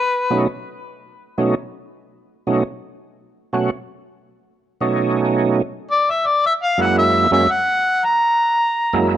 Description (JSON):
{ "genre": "blues", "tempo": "112 BPM", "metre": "4/4", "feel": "swing 65% on 8ths", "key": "unclear", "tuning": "A4 = 440 Hz", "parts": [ { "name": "mellow harmonica", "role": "melody", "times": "0.0-0.5, 5.9-9.1 s", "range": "B4 to A#5", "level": "-16 LUFS", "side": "left 1 dB", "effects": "overdrive, plate reverb" }, { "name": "overdriven tonewheel organ", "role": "accompaniment", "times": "0.3-9.2 s", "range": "F#2 to F#4", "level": "-18 LUFS", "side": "right 3 dB", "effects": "slow rotary speaker, chorus vibrato, plate reverb" } ], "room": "moderate club reverb, RT60 0.5 s", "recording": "none", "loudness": "-16 LUFS", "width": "side -11 dB against mid", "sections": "0.0-9.2 A section", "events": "none", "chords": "0.0 B9; 5.9 F#9" }